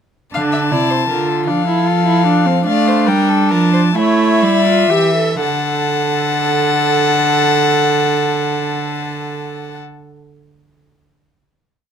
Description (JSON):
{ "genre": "classical, baroque-style fugue for string quartet", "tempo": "39-54 BPM (dotted quarters)", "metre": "6/8", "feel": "straight", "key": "unclear", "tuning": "A4 = 440 Hz", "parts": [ { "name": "warm violin", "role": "melody", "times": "0.3-9.8 s", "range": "E5 to A5", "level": "-20 LUFS", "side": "left 8 dB", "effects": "none" }, { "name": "warm violin", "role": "second line", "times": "0.3-9.8 s", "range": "A4 to F#5", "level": "-19 LUFS", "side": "left 6 dB", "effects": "none" }, { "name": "warm viola", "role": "accompaniment", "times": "0.3-9.8 s", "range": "C4 to A4", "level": "-18 LUFS", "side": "right 3 dB", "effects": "none" }, { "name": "rich cello", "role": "bass", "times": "0.3-9.8 s", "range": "C3 to A3", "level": "-18 LUFS", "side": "right 4 dB", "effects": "none" } ], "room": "light reverb", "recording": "close, detailed microphones", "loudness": "-12 LUFS", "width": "side -8 dB against mid", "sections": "0.3-5.4 exposition; 5.4-11.6 final chord", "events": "slowing down 0.3-7.0", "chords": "0.3 Dm; 1.5 Dm/F; 2.7 Dm; 4.0 A7; 5.4 D", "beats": "| 0.34 1.48 | 2.66 3.95 | 5.41 6.95 | 8.50" }